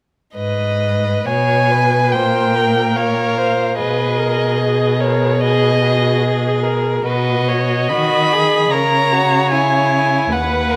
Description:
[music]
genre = classical, slow romantic movement for string quartet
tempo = 72 BPM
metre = 4/4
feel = uneven beats, rubato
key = G# minor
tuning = A4 = 440 Hz
[part]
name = dark violin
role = melody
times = 0.4-10.8 s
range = B4 to B5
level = -21 LUFS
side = equal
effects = none
[part]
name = rich violin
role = second line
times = 0.4-10.8 s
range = E4 to D#5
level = -23 LUFS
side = equal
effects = none
[part]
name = rich cello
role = bass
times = 0.4-10.8 s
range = D#2 to D#3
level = -21 LUFS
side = equal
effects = none
[part]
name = dark viola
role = accompaniment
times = 2.1-10.8 s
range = F#4 to D#5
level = -23 LUFS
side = equal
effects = none
[sound]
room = moderate recital hall reverb, RT60 1.6 s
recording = none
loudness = -16 LUFS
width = mono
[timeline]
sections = 0.4-10.8 A section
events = none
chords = 0.4 G#m; 2.1 A#m69; 3.8 G#m/B; 7.0 B; 8.7 A#dim/C#

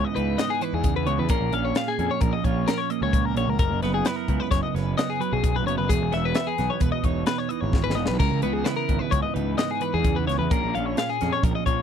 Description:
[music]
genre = math rock and midwest emo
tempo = 130 BPM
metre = 5/4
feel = straight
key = unclear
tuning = A4 = 440 Hz
[part]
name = clean electric guitar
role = accompaniment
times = 0.0-11.8 s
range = E2 to B4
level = -28 LUFS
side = right 16 dB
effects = none
[part]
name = twelve-string electric guitar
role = arpeggios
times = 0.0-11.8 s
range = G#4 to E#5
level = -27 LUFS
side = left 9 dB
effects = none
[part]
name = fuzz picked electric bass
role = bass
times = 0.0-11.8 s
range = E1 to E#2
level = -27 LUFS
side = equal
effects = overdrive
[part]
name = crisp fusion drum kit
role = drums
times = 0.2-11.8 s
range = crash cymbal, hi-hat, kick drum, snare drum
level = -25 LUFS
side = left 1 dB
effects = none
[sound]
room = little or no reverb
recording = dry, close 1970s-style studio recording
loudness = -21 LUFS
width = side -8 dB against mid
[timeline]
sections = 0.0-11.8 A section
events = drum fill 7.7-8.2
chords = 0.0 C#m9; 1.3 A#m7; 3.6 F#9sus4; 5.9 Emaj7; 8.2 C#m9; 10.5 A#m7

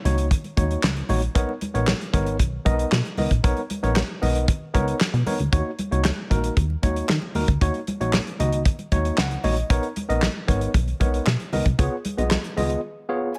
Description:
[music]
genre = early-eighties boogie funk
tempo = 115 BPM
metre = 4/4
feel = straight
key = Eb minor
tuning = A4 = 440 Hz
[part]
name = barky tine electric piano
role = accompaniment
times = 0.0-13.4 s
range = Bb3 to Ab5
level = -29 LUFS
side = equal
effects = overdrive
[part]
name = plucky analog bass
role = bass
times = 0.1-12.8 s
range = Ab1 to Eb3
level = -26 LUFS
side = equal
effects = none
[part]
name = damped 70s drum kit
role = drums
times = 0.1-12.8 s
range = handclaps, hi-hat, kick drum, snare drum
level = -26 LUFS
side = equal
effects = gated reverb
[part]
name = congas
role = percussion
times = 0.1-12.7 s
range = none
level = -35 LUFS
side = equal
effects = none
[sound]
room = little or no reverb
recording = none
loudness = -23 LUFS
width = mono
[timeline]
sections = 0.0-13.4 A section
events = tine electric piano fill 8.9-9.7, 12.8-13.4; break 12.8-13.4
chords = 0.0 Ebm7; 1.4 Bmaj9; 5.5 Ebm7; 9.7 Bmaj9; 11.8 Db7

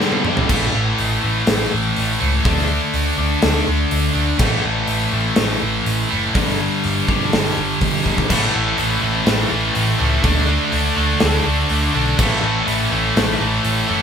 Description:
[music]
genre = hard rock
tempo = 123 BPM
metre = 4/4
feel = straight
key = unclear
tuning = A4 = 440 Hz
[part]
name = heavy high-gain guitar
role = riff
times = 0.0-0.5, 8.3-14.0 s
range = G2 to D4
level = -22 LUFS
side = equal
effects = distortion
[part]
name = scooped high-gain guitar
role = riff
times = 0.0-14.0 s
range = G2 to D4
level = -22 LUFS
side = left 8 dB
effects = distortion
[part]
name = scooped high-gain guitar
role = riff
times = 0.0-14.0 s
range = G2 to D4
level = -21 LUFS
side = right 7 dB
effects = distortion
[part]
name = gated 80s drum kit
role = drums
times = 0.0-13.8 s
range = crash cymbal, hi-hat, kick drum, snare drum, toms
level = -21 LUFS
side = equal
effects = none
[part]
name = overdriven picked electric bass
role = bass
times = 0.5-14.0 s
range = F#1 to D2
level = -22 LUFS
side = right 1 dB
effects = none
[sound]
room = light reverb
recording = band playing live in one room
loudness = -15 LUFS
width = side -7 dB against mid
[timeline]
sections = 0.5-14.0 A section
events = break 0.0-0.5; drum fill 0.0-0.5, 8.1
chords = 0.5 A5; 2.4 D5; 4.4 A5; 6.4 G5; 8.3 A5; 10.2 D5; 12.2 A5

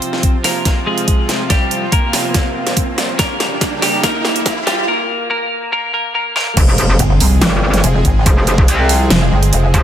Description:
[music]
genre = heavy wobble dubstep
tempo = 142 BPM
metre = 4/4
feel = half-time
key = F minor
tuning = A4 = 440 Hz
[part]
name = semi-hollow electric guitar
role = melody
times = 0.0-6.6 s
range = G3 to C5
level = -19 LUFS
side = left 1 dB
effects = wide subtle chorus, dub echo
[part]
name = supersaw pad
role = sustained chords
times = 0.0-9.8 s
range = C3 to Ab4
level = -22 LUFS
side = right 2 dB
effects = sidechain pumping
[part]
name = dubstep drum kit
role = drums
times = 0.0-9.8 s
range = crash cymbal, hi-hat, snare drum, toms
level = -18 LUFS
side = right 1 dB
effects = overdrive, high-pass filter on hats, high-pass filter on snare, high-pass filter on toms, high-pass filter on cymbals, high-pass filter on room
[part]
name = riser and impact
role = sound effects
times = 0.0-8.3 s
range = none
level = -22 LUFS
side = equal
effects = none
[part]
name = electronic kick drum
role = drums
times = 0.2-9.8 s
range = none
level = -14 LUFS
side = equal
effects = overdrive
[part]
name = metallic wobble bass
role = bass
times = 6.6-9.8 s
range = F1 to C2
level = -13 LUFS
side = equal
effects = chorus, overdrive
[part]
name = pulsing pluck wobble bass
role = bass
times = 7.0-9.7 s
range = F1 to C2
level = -12 LUFS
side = equal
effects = chorus, overdrive
[sound]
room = light reverb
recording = high-pass filter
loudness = -12 LUFS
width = side -10 dB against mid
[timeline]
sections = 0.0-6.6 A section; 6.6-9.8 B section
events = build-up 0.0-6.6; drum fill 0.0-4.9, 6.4; riser 0.0-4.9; filter sweep 0.0-6.6; break 4.9-6.6; drop 6.6-9.8; impact 6.6-8.3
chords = 0.0 Fm; 3.2 Gdim; 6.6 Fm

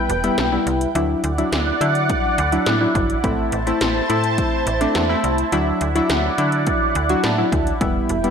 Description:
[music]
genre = synth-pop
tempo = 105 BPM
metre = 4/4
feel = straight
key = unclear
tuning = A4 = 440 Hz
[part]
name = warm analog keys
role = accompaniment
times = 0.0-8.3 s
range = F#3 to A5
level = -21 LUFS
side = left 2 dB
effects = chorus
[part]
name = lush unison pad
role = sustained chords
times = 0.0-8.3 s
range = E4 to A5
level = -22 LUFS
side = right 1 dB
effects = chorus, phaser
[part]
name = impact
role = sound effects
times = 0.0-1.0 s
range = none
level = barely audible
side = none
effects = none
[part]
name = slap-like FM bass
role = bass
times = 0.1-8.3 s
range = E1 to D3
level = -23 LUFS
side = equal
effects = none
[part]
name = 80s electronic pad drums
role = drums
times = 0.1-8.3 s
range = hi-hat, kick drum, snare drum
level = -24 LUFS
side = equal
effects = none
[sound]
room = moderate recital hall reverb, RT60 1.4 s, digital ambience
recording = none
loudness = -17 LUFS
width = side -7 dB against mid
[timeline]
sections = 0.0-8.3 A section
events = impact 0.0-1.0; synth keys fill 7.0-7.8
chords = 0.0 Em; 1.0 Dadd9; 3.2 Am; 5.5 Dadd9

